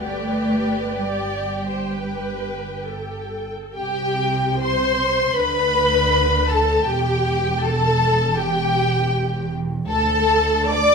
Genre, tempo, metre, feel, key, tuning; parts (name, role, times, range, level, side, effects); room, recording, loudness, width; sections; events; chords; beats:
classical, slow romantic movement for string orchestra; 62-83 BPM; 4/4; rubato; G major, C major from 3.8 s; A4 = 441 Hz
warm symphonic violin section; melody; 0.0-10.9 s; G5 to D6; -23 LUFS; left 2 dB
warm symphonic violin section; second line; 0.0-10.9 s; G4 to D5; -24 LUFS; left 3 dB
warm symphonic viola section; accompaniment; 0.0-10.9 s; G4 to D5; -25 LUFS; right 1 dB
dark symphonic cello section; bass; 0.0-10.9 s; D2 to A3; -27 LUFS; right 2 dB
dark symphonic double bass section; bass; 0.0-10.9 s; E1 to D2; -26 LUFS; right 2 dB
moderate recital hall reverb, RT60 1.4 s; -18 LUFS; side -5 dB against mid
0.0-3.8 A section; 3.8-10.9 B section
0.0 G; 3.8 C5; 5.4 Bm7/D; 6.9 Emadd11; 9.9 D5
| 0.02 0.98 1.92 2.86 | 3.76 4.61 5.38 6.13 | 6.89 7.65 8.40 9.16 | 9.89 10.70